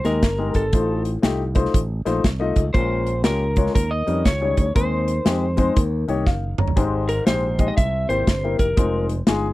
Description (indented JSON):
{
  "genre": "uptempo gospel",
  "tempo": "119 BPM",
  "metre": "4/4",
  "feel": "swing 64% on 8ths",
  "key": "Ab major",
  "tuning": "A4 = 440 Hz",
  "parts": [
    { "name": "electric slide guitar", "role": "melody", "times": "0.0-9.1 s", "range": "A4 to E5", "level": "-24 LUFS", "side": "equal", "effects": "none" },
    { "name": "warm upright piano", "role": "accompaniment", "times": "0.0-9.5 s", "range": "Ab2 to Bb5", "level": "-24 LUFS", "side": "left 4 dB", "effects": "none" },
    { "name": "modern bright fingered electric bass", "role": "bass", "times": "0.0-9.5 s", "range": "F1 to F2", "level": "-24 LUFS", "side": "right 1 dB", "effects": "none" },
    { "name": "modern studio drum kit", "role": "drums", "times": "0.0-9.4 s", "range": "hi-hat, kick drum, snare drum, toms", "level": "-19 LUFS", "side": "equal", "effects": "none" }
  ],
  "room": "little or no reverb",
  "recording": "dry, close 1970s-style studio recording",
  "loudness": "-18 LUFS",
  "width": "side -17 dB against mid",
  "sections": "0.0-9.5 A section",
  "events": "drum fill 6.3-6.8",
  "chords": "0.0 Abmaj7(no3); 0.7 F7/A; 2.7 Bbm7; 3.8 Eb7; 4.8 Ab/Eb; 5.8 Eb7; 6.8 Abmaj7; 7.8 C7; 8.8 Fm7"
}